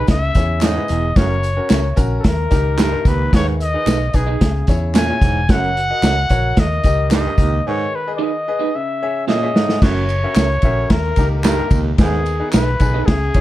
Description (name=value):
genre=uptempo 1960s-style soul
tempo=111 BPM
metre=4/4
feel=straight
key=F# mixolydian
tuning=A4 = 440 Hz
part: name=breathy trumpet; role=melody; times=0.0-13.4 s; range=G#4 to G#5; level=-21 LUFS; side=left 2 dB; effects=slapback echo
part: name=bright upright piano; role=accompaniment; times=0.0-13.4 s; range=C#3 to E5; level=-26 LUFS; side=left 3 dB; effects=none
part: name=electric guitar through a small old amp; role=stabs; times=0.0-13.0 s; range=C#4 to E5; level=-23 LUFS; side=right 9 dB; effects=none
part: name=vintage muted fingered electric bass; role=bass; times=0.0-13.4 s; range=E1 to E2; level=-20 LUFS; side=equal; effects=none
part: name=vintage drum kit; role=drums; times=0.1-13.4 s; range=crash cymbal, hi-hat, kick drum, ride cymbal, snare drum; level=-17 LUFS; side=equal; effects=none
part: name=tambourine and handclaps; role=percussion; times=0.1-13.4 s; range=none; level=-33 LUFS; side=equal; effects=none
part: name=raspy baritone saxophone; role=riff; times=0.6-12.2 s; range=D#2 to A#2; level=-23 LUFS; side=right 5 dB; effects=none
room=light reverb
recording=dark, warm production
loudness=-14 LUFS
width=side -14 dB against mid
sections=0.0-9.8 A section; 9.8-13.4 A section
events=break 7.7-9.8; drum fill 9.3-9.8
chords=0.1 C#m; 1.2 F#; 2.2 D#; 3.3 G#m/D#; 4.4 C#m; 5.5 F#; 6.6 D#; 7.7 G#m; 8.7 C#m; 9.8 F#; 10.9 D#; 12.0 G#m/D#